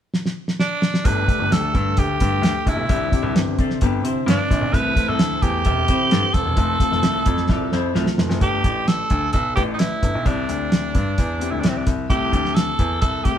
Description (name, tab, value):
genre	uptempo 1960s-style soul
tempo	130 BPM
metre	4/4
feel	straight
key	G mixolydian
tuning	A4 = 440 Hz
part	cloth-damped thuddy drum kit	drums	0.1-13.4 s	hi-hat, kick drum, snare drum	-21 LUFS	equal	none
part	raspy tenor saxophone	melody	0.6-13.4 s	C4 to B4	-23 LUFS	right 1 dB	none
part	bright concert grand piano	accompaniment	1.0-13.4 s	A3 to B4	-28 LUFS	left 5 dB	none
part	mellow tonewheel organ	sustained chords	1.1-8.4 s	D3 to A4	-30 LUFS	equal	slow rotary speaker, chorus vibrato
part	warm baby grand piano	bass	1.1-13.3 s	Eb1 to C3	-24 LUFS	left 1 dB	none
part	vintage hollow-body jazz guitar	riff	3.6-8.4 s	A3 to E5	-27 LUFS	left 3 dB	none
room	moderate stone room reverb, RT60 1.2 s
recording	band playing live in one room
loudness	-17 LUFS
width	side -9 dB against mid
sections	0.0-1.1 A section; 1.1-8.4 B section; 8.4-13.4 C section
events	drum fill 0.1-1.1, 7.5-8.4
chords	0.0 N.C.; 1.1 Gsus2; 2.9 Cadd9; 4.7 Am/C; 6.6 F; 8.4 Gsus2; 10.3 Cadd9; 12.1 Am/C